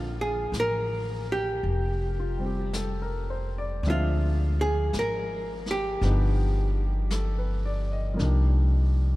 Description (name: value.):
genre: jazz ballad.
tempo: 55 BPM.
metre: 4/4.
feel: swing 67% on 8ths.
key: Bb major.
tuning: A4 = 440 Hz.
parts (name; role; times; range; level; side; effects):
archtop guitar, miked and amplified; melody; 0.0-7.1 s; F4 to Bb4; -31 LUFS; equal; none.
warm baby grand piano; accompaniment; 0.0-9.2 s; D3 to E5; -34 LUFS; left 1 dB; none.
upright bass; bass; 0.0-9.2 s; F1 to D2; -26 LUFS; equal; none.
vintage brush drum kit; drums; 0.5-9.2 s; brushed snare drum, hi-hat, snare drum; -41 LUFS; left 1 dB; none.
room: light reverb, small room ambience.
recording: none.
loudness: -24 LUFS.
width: side -18 dB against mid.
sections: 0.0-9.2 A section.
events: hollow-body jazz guitar solo 0.0-9.2.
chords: 0.0 Bb69; 3.8 Dm7b5; 6.0 G7b13; 8.2 Cm11.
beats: 0.53 1.63 2.73 | 3.84 4.93 6.02 7.11 | 8.19.